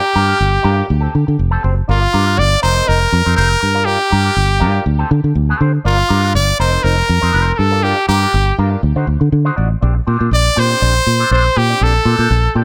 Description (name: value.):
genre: disco.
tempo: 121 BPM.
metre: 4/4.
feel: straight.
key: G minor.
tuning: A4 = 440 Hz.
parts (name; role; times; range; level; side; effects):
brilliant trumpet; melody; 0.0-12.6 s; F4 to D5; -18 LUFS; equal; tape echo.
electric guitar with an envelope filter; accompaniment; 0.0-12.6 s; C4 to D5; -25 LUFS; equal; wah, vibrato effect.
fingered electric bass; bass; 0.2-12.6 s; F1 to D3; -16 LUFS; equal; none.
room: small room ambience.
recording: none.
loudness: -14 LUFS.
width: mono.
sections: 0.0-9.8 A section; 9.8-12.6 B section.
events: none.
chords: 0.0 Gm7; 0.9 D7sus4; 1.9 Gm7; 2.6 F7sus4; 3.6 Gm7; 4.9 D7sus4; 5.8 Gm7; 6.6 F7sus4; 7.6 Gm7; 8.8 D7b9; 9.8 Bb69.